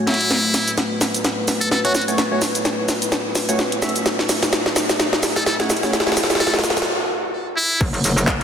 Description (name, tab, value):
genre	bass house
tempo	128 BPM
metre	4/4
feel	swing 57% on 16ths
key	F# minor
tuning	A4 = 438 Hz
part	dark analog pad	sustained chords	0.0-8.4 s	A3 to C#5	-27 LUFS	left 1 dB	chorus, sidechain pumping
part	trumpet with metal mute	melody	0.1-2.0, 5.4-7.8 s	E4 to A4	-23 LUFS	equal	digital delay
part	percussive organ stab	stabs	0.1-6.1 s	A3 to E5	-26 LUFS	right 1 dB	lush chorus, sidechain pumping, digital delay
part	garage drum kit	drums	0.1-8.4 s	cabasa, crash cymbal, handclaps, hi-hat, snare drum	-19 LUFS	equal	soft clipping on snare, studio reverb
part	riser and impact	sound effects	2.0-8.4 s	none	-31 LUFS	right 1 dB	none
part	metallic wobble bass	bass	7.8-8.4 s	F#1	-19 LUFS	equal	distortion, chorus, tube saturation, sidechain pumping
part	electronic kick drum	drums	7.8-8.4 s	none	-21 LUFS	equal	studio reverb
room	wet lush hall reverb, RT60 2.2 s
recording	dense, heavily limited modern master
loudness	-17 LUFS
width	side -8 dB against mid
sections	0.0-7.8 A section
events	build-up 0.0-7.8; drum fill 0.0-6.9; break 6.9-7.8; impact 7.8-8.4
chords	0.0 F#m